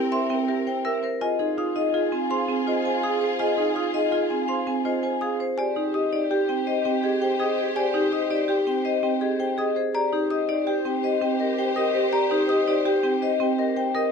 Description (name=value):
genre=classical, minimalist pattern music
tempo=165 BPM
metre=6/4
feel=straight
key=Eb major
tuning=A4 = 441 Hz
part: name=vibraphone with medium hard mallets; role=melody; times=0.0-14.1 s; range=G4 to Ab5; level=-26 LUFS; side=left 10 dB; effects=none
part: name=mellow French horn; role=second line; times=0.0-14.1 s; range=G4 to Bb4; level=-31 LUFS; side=right 2 dB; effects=none
part: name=warm symphonic string section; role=sustained chords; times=0.0-14.1 s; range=C4 to C5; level=-32 LUFS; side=left 1 dB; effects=none
part: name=marimba with medium hard mallets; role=arpeggios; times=0.0-14.1 s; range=C4 to C5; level=-26 LUFS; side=right 5 dB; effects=none
part: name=xylophone with soft rubber mallets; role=arpeggios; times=0.1-14.1 s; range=Eb5 to E6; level=-32 LUFS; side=left 1 dB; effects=none
room=light reverb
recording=dark, warm production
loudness=-21 LUFS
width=side -6 dB against mid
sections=0.0-14.1 A section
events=none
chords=0.0 C7; 1.2 Fm7; 5.6 Abmaj7; 9.9 Eb6